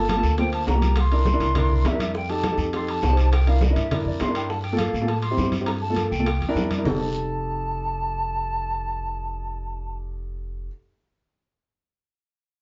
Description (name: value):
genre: Afro-Cuban jazz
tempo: 204 BPM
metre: 4/4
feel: straight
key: F mixolydian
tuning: A4 = 440 Hz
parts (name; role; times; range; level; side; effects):
- mellow hollow silver concert flute; melody; 0.0-10.0 s; E5 to C6; -31 LUFS; equal; none
- dark grand piano; accompaniment; 0.0-10.7 s; Bb3 to G5; -30 LUFS; equal; none
- upright bass; bass; 0.0-10.7 s; F1 to A2; -27 LUFS; equal; none
- bongos; percussion; 0.1-6.9 s; none; -37 LUFS; equal; none
- congas; percussion; 0.1-6.9 s; none; -33 LUFS; equal; none
- guiro; percussion; 0.1-6.9 s; none; -42 LUFS; equal; none
- timbales; percussion; 0.1-6.9 s; none; -36 LUFS; equal; none
room: wet small room reverb, RT60 0.5 s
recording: heard from further back in the room, nothing above 7.6 kHz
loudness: -23 LUFS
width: mono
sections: 0.0-4.5 A section; 4.5-6.9 B section; 6.9-9.2 C section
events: grand piano fill 3.9-4.5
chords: 0.0 Gm7; 1.0 C7; 2.1 F7; 3.3 C7; 4.5 Gm9; 5.1 Am7; 5.7 Gm9; 6.3 C9; 6.9 F9